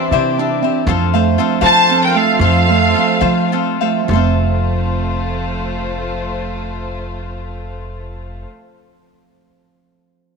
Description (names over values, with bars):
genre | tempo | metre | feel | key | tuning
mexican folk, mariachi | 66-80 BPM (dotted quarters) | 6/8 | straight | F major | A4 = 440 Hz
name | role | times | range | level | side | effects
cavaquinho | accompaniment | 0.0-8.5 s | D4 to F5 | -20 LUFS | left 15 dB | none
muted chamber violin section | sustained chords | 0.0-8.4 s | A3 to D5 | -25 LUFS | left 3 dB | none
Celtic harp | arpeggios | 0.0-8.5 s | E3 to F4 | -19 LUFS | right 11 dB | none
upright bass | bass | 0.1-8.4 s | F1 to F3 | -20 LUFS | equal | none
rich studio violin section | melody | 1.6-3.5 s | F5 to A5 | -14 LUFS | equal | none
mellow trumpet | second line | 1.6-3.5 s | A4 to C5 | -23 LUFS | right 11 dB | none
room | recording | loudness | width
moderate plate reverb, RT60 3.2 s | 1960s-style stereo with parts hard left and right | -13 LUFS | side -4 dB against mid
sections
0.0-4.1 A section; 4.1-7.7 B section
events
slowing down 0.9-4.1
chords
0.0 Cadd9; 0.9 F